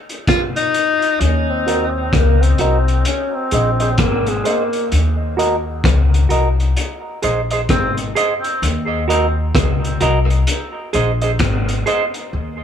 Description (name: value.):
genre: dub reggae.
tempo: 65 BPM.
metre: 4/4.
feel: swing 61% on 16ths.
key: Eb dorian.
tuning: A4 = 440 Hz.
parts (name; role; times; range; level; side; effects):
crunchy breakbeat drum kit; drums; 0.1-12.3 s; hi-hat, kick drum, rim click; -21 LUFS; left 1 dB; none.
breathy tenor saxophone; melody; 0.3-8.0 s; Ab3 to F4; -21 LUFS; left 2 dB; low-pass filter, dub echo.
upright bass; bass; 1.2-12.6 s; Ab1 to Eb2; -17 LUFS; left 1 dB; none.
semi-hollow electric guitar; accompaniment; 1.7-12.0 s; Gb4 to Eb5; -20 LUFS; right 3 dB; low-pass filter, dub echo.
room: light reverb, small room ambience.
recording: none.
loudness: -14 LUFS.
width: side -8 dB against mid.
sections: 0.0-1.2 A section; 1.2-12.6 B section.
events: break 0.0-1.2, 12.3-12.6; filter sweep 1.2-12.6.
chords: 0.0 N.C.; 1.2 Ebm; 3.1 Ab; 4.9 Ebm; 6.8 Ab; 8.6 Ebm; 10.5 Ab.